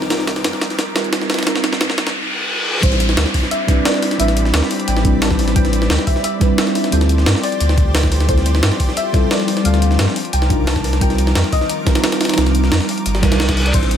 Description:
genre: liquid drum and bass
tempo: 176 BPM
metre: 4/4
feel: straight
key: unclear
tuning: A4 = 440 Hz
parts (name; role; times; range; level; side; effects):
- soft round pluck; melody; 0.0-14.0 s; C5 to A5; -25 LUFS; left 2 dB; wide subtle chorus, digital delay
- mellow FM electric piano; accompaniment; 0.0-14.0 s; G3 to C5; -20 LUFS; right 1 dB; chorus, phaser, digital delay
- lush unison pad; sustained chords; 0.0-14.0 s; Eb3 to D6; -27 LUFS; left 1 dB; chorus
- warm sub bass; bass; 0.0-14.0 s; G1 to G2; -17 LUFS; equal; none
- jungle sampler-style drum kit; drums; 0.0-14.0 s; hi-hat, snare drum; -23 LUFS; equal; high-pass filter on hats, small room ambience, high-pass filter on snare, high-pass filter on room
- riser, reverse cymbal and downlifter; sound effects; 0.0-5.6, 13.2-13.7 s; none; -23 LUFS; equal; none
- breakbeat sampler-style drum kit; drums; 0.1-14.0 s; crash cymbal, hi-hat, snare drum; -22 LUFS; equal; small room ambience
- electronic kick drum; drums; 2.8-13.8 s; none; -17 LUFS; equal; small room ambience
room: light reverb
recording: high-pass filter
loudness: -14 LUFS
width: side -9 dB against mid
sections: 0.0-2.8 A section; 2.8-14.0 B section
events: build-up 0.0-2.8; drum fill 0.0-2.1; riser 0.0-2.8; filter sweep 0.0-2.8; reverse cymbal 2.1-2.8, 13.2-13.7; drop 2.8-14.0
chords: 0.0 Cm11; 2.8 Am11; 6.9 Dm11; 10.2 Cm11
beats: | 0.10 0.45 0.79 1.13 | 1.47 1.81 2.15 2.49 | 2.83 3.17 3.51 3.85 | 4.20 4.54 4.88 5.22 | 5.56 5.90 6.24 6.58 | 6.92 7.26 7.61 7.95 | 8.29 8.63 8.97 9.31 | 9.65 9.99 10.33 10.67 | 11.01 11.36 11.70 12.04 | 12.38 12.72 13.06 13.40 | 13.74

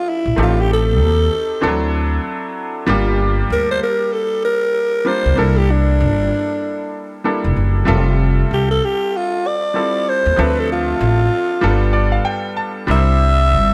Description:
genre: hip hop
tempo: 96 BPM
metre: 4/4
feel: swing 60% on 16ths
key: D minor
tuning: A4 = 445 Hz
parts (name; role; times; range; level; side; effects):
- growling alto saxophone; melody; 0.0-13.7 s; D4 to E5; -20 LUFS; equal; slapback echo
- bright upright piano; accompaniment; 0.0-13.7 s; E3 to A5; -23 LUFS; equal; none
- upright bass; bass; 0.3-13.7 s; F1 to Eb2; -18 LUFS; equal; none
room: light reverb, small room ambience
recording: none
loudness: -17 LUFS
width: mono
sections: 0.0-13.7 A section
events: alto saxophone solo 0.0-13.7; upright piano fill 11.6-12.9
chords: 0.4 Am7b5; 1.6 D7; 2.9 Gm7; 5.4 C13; 7.9 Fmaj9; 10.4 Dm7; 11.6 G9; 12.9 Cadd9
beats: | 0.38 1.00 1.63 2.25 | 2.88 3.50 4.13 4.75 | 5.38 6.00 6.63 7.25 | 7.88 8.50 9.13 9.75 | 10.38 11.00 11.63 12.25 | 12.88 13.50

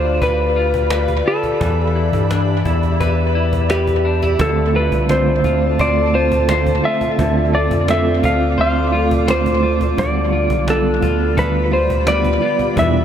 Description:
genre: dream pop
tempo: 86 BPM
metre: 4/4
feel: straight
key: unclear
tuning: A4 = 439 Hz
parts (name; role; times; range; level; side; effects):
- clean lap steel guitar; melody; 0.0-13.0 s; G4 to F5; -19 LUFS; equal; tape echo
- ethereal airy pad; sustained chords; 0.0-13.0 s; F4 to D6; -23 LUFS; left 1 dB; ensemble chorus, built-in reverb
- clean electric guitar; arpeggios; 0.0-13.0 s; D3 to C5; -22 LUFS; left 4 dB; lush chorus, tape echo
- round analog bass; bass; 0.0-13.0 s; B1 to G2; -20 LUFS; equal; none
- cajon; drums; 0.2-12.9 s; none; -27 LUFS; equal; tape echo
- mellow electric guitar; accompaniment; 4.4-13.0 s; E2 to F4; -21 LUFS; right 4 dB; tremolo, lush chorus, tape echo
room: moderate echo chamber reverb, RT60 2.1 s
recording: echo-heavy mix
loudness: -14 LUFS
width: side -9 dB against mid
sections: 0.0-13.0 A section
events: none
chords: 0.0 G7; 1.6 Em7; 4.4 Dm7; 10.0 G7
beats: 0.21 0.91 | 1.61 2.31 3.00 3.70 | 4.40 5.10 5.80 6.49 | 7.19 7.89 8.59 9.28 | 9.98 10.68 11.38 12.07 | 12.77

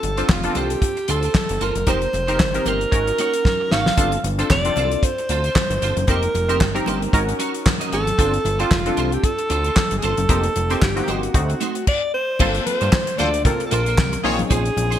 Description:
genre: early-eighties boogie funk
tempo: 114 BPM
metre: 4/4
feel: swing 56% on 16ths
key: G minor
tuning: A4 = 441 Hz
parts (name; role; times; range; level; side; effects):
- breathy alto saxophone; melody; 0.0-15.0 s; F4 to F5; -22 LUFS; right 1 dB; none
- clean electric guitar; riff; 0.0-15.0 s; A3 to Eb5; -28 LUFS; right 6 dB; ensemble chorus
- fat analog bass; bass; 0.0-15.0 s; F1 to G2; -23 LUFS; equal; none
- damped 70s drum kit; drums; 0.0-15.0 s; crash cymbal, handclaps, hi-hat, kick drum, snare drum; -21 LUFS; equal; gated reverb
- congas; percussion; 0.0-14.9 s; none; -32 LUFS; left 4 dB; none
- funky polysynth comp; accompaniment; 0.2-15.0 s; A3 to Bb4; -26 LUFS; left 1 dB; chorus
- warm horn section; second line; 13.2-14.4 s; F4 to Db5; -27 LUFS; left 3 dB; none
room: light reverb, studio ambience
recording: bright 1980s-style digital production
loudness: -17 LUFS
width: side -10 dB against mid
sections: 0.0-12.4 A section; 12.4-15.0 B section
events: drum fill 3.5-4.0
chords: 0.0 G9sus4; 1.9 F9sus4; 2.9 Ab9sus4; 4.0 G9sus4; 6.1 F9sus4; 7.1 Ab9sus4; 8.2 G9sus4; 10.3 F9sus4; 11.3 D7b9; 12.4 Gm11; 14.2 Bbm11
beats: 0.29 0.82 1.34 | 1.87 2.40 2.92 3.45 | 3.98 4.50 5.03 5.55 | 6.08 6.61 7.13 7.66 | 8.19 8.71 9.24 9.77 | 10.29 10.82 11.35 11.87 | 12.40 12.92 13.45 13.98 | 14.50

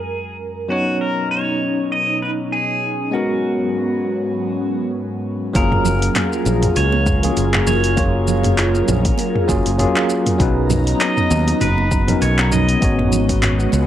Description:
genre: sunset chillout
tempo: 99 BPM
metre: 4/4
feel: swing 56% on 16ths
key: F# major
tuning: A4 = 440 Hz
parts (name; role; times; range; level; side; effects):
- pedal steel guitar; melody; 0.0-13.9 s; F#4 to D#5; -23 LUFS; left 1 dB; cassette tape, analog delay
- bell-like tine electric piano; accompaniment; 0.0-13.9 s; F#3 to E#5; -21 LUFS; equal; medium stereo tremolo, auto-pan, tape echo
- airy breathy pad; sustained chords; 0.0-13.9 s; F#2 to A#5; -23 LUFS; equal; chorus, phaser
- modern bright fingered electric bass; bass; 5.6-13.9 s; F#1 to D#2; -18 LUFS; equal; none
- deep house drum kit; drums; 5.6-13.9 s; handclaps, hi-hat, shaker, toms; -22 LUFS; equal; none
- electronic kick drum; drums; 5.6-13.4 s; none; -20 LUFS; equal; none
- congas; percussion; 5.7-13.9 s; none; -27 LUFS; right 12 dB; none
room: light reverb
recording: home recording on cassette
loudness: -15 LUFS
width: side -11 dB against mid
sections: 0.0-5.6 A section; 5.6-13.9 B section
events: none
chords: 0.0 F#maj9; 0.7 Badd9; 3.1 G#m11; 5.6 F#maj9; 10.4 Bmaj9; 12.8 G#m11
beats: 0.10 | 0.70 1.31 1.91 2.52 | 3.13 3.73 4.34 4.95 | 5.55 6.16 6.76 7.37 | 7.97 8.58 9.19 9.79 | 10.40 11.01 11.61 12.22 | 12.82 13.43

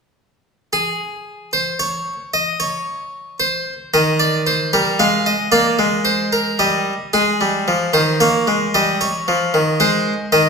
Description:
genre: classical, baroque-style two-part invention for harpsichord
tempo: 112 BPM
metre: 3/4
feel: straight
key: Ab major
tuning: A4 = 440 Hz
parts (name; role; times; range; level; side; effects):
- harpsichord; solo; 0.7-10.5 s; Eb3 to F5; -15 LUFS; equal; none
room: wet recital hall reverb, RT60 1.6 s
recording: recorded in a church or concert hall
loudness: -15 LUFS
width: side -5 dB against mid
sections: 0.7-7.1 A section; 7.1-10.5 B section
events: none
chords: 0.7 N.C.; 3.9 Eb; 5.0 Ab5; 5.5 Bb; 6.6 Eb/G; 7.1 Ab; 8.2 Db5; 8.7 Eb/G; 9.8 Ab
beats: | 0.72 1.26 1.80 | 2.33 2.87 3.40 | 3.93 4.46 5.00 | 5.53 6.06 6.59 | 7.13 7.67 8.21 | 8.74 9.27 9.80 | 10.33

